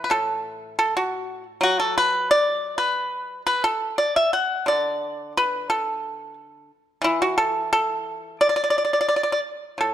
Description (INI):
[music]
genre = chinese traditional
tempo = 88 BPM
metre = 2/4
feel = rubato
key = D gong mode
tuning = A4 = 440 Hz
[part]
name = pipa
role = solo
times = 0.0-9.9 s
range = A2 to F#5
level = -20 LUFS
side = equal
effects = none
[sound]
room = moderate recital hall reverb, RT60 1.7 s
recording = dark, warm production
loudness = -20 LUFS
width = side -11 dB against mid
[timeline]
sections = 0.0-9.8 A section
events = none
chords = none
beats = | 0.29 0.96 | 1.63 2.30 | 2.96 3.63 | 4.33 5.02 | 5.70 6.37 | 7.04 7.71 | 8.40 9.09 | 9.80